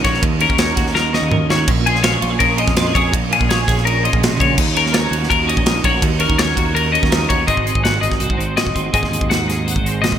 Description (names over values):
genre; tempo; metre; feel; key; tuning
math rock and midwest emo; 165 BPM; 4/4; straight; Eb minor; A4 = 441 Hz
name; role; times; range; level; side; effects
twelve-string electric guitar; accompaniment; 0.0-10.2 s; Eb2 to Bb4; -21 LUFS; right 5 dB; ensemble chorus
twelve-string electric guitar; arpeggios; 0.0-10.2 s; Ab4 to Gb5; -19 LUFS; left 6 dB; lush chorus, digital delay
growling fingered electric bass; bass; 0.0-10.2 s; Gb1 to F2; -22 LUFS; equal; overdrive
modern studio drum kit; drums; 0.0-10.2 s; crash cymbal, hi-hat, kick drum, ride cymbal, snare drum, toms; -18 LUFS; equal; gated reverb
room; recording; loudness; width
moderate lush hall reverb, RT60 1.6 s, studio reverb; bright 1980s-style digital production; -14 LUFS; side -9 dB against mid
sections
0.0-7.5 A section; 7.5-10.2 B section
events
drum fill 1.0-1.7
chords
0.0 Ebm7; 1.7 Bbm7; 4.6 Ebm7; 7.5 Ab7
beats
| 0.23 0.59 0.95 1.31 | 1.68 2.04 2.40 2.76 | 3.13 3.49 3.85 4.21 | 4.58 4.94 5.30 5.66 | 6.03 6.39 6.75 7.11 | 7.48 7.84 8.21 8.57 | 8.94 9.30 9.67 10.03